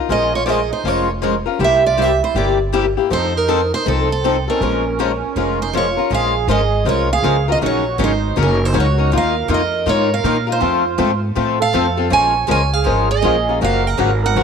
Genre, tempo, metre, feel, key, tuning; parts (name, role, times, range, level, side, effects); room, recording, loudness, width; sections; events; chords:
acoustic string swing (jazz manouche); 160 BPM; 4/4; swing 63% on 8ths; Bb minor; A4 = 440 Hz
picked swing-style acoustic guitar; accompaniment; 0.0-14.4 s; C3 to Bb4; -20 LUFS; left 11 dB
picked steel-string acoustic guitar; melody; 0.1-14.4 s; A4 to Ab5; -20 LUFS; right 3 dB; slapback echo
accordion; second line; 0.1-14.4 s; C4 to Db5; -23 LUFS; right 11 dB; light tremolo tuning
picked steel-string acoustic guitar; accompaniment; 0.1-14.4 s; C3 to Bb4; -26 LUFS; right 12 dB
upright bass; bass; 0.1-14.4 s; F1 to Bb2; -20 LUFS; equal
moderate plate reverb, RT60 2.7 s; 1960s-style stereo with parts hard left and right; -14 LUFS; side -6 dB against mid
0.0-6.1 A section; 6.1-14.4 B section
0.1 Bbm7; 1.6 C7; 3.1 F7; 4.6 Bbm7; 7.6 Gb6; 9.1 Ebsus2; 10.6 F; 12.1 Bbm7; 13.6 Gbmaj7